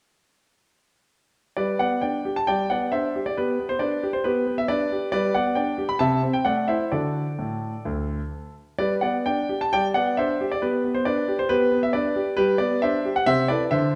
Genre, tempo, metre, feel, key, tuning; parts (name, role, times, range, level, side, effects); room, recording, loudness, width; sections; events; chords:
classical-period piano sonatina; 134 BPM; 4/4; rubato; G major; A4 = 441 Hz
warm grand piano; solo; 1.6-14.0 s; D2 to B5; -24 LUFS; equal
wet recital hall reverb, RT60 1.5 s; -24 LUFS; mono
1.6-14.0 A section
1.6 G; 3.4 G/B; 5.1 G; 6.0 Am/C; 6.9 D; 8.8 G; 10.6 G/B; 12.4 G; 13.3 Am/C